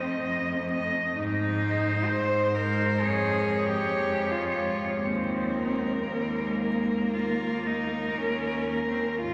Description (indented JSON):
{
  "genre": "classical, lyrical piece for cello ensemble",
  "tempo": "56-66 BPM",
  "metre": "4/4",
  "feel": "rubato",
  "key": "unclear",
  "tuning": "A4 = 440 Hz",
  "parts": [
    { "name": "clear cello", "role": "melody", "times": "0.0-9.3 s", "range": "F4 to Eb5", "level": "-33 LUFS", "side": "equal", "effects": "none" },
    { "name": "rich cello", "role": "second line", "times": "0.0-9.3 s", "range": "Bb3 to C5", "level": "-32 LUFS", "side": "equal", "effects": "none" },
    { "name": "rich cello", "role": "accompaniment", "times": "0.0-9.3 s", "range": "Eb2 to F4", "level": "-36 LUFS", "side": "equal", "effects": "none" },
    { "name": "clear cello", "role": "bass", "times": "0.0-9.3 s", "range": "Eb2 to Ab2", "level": "-34 LUFS", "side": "equal", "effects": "none" }
  ],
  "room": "wet cathedral reverb, RT60 5.7 s",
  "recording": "vinyl crackle",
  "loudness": "-27 LUFS",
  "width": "mono",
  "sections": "0.0-9.2 A section",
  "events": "none",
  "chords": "0.0 F7; 1.2 Ab; 3.0 Db/F; 5.0 Ebsus4; 7.1 Eb5",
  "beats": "0.24 | 1.17 2.09 3.03 4.00 | 5.01 6.08 7.13 8.18 | 9.20"
}